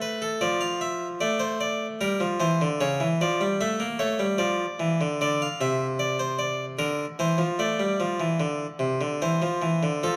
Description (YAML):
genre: classical, baroque-style two-part invention for harpsichord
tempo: 75 BPM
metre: 3/4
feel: straight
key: D minor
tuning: A4 = 440 Hz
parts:
  - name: harpsichord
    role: solo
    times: 0.0-10.2 s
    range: C3 to F5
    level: -26 LUFS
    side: equal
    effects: none
room: moderate recital hall reverb, RT60 1.4 s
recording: none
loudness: -26 LUFS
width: mono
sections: 0.0-5.2 A section; 5.2-10.0 B section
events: none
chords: 0.4 Dm/F; 2.0 Gm; 2.8 A/C#; 4.4 Dm/F; 5.2 Bb (rootless); 7.6 F5; 9.2 C/E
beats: | 0.41 1.21 2.01 | 2.81 3.61 4.40 | 5.20 6.00 6.79 | 7.61 8.41 9.21 | 10.03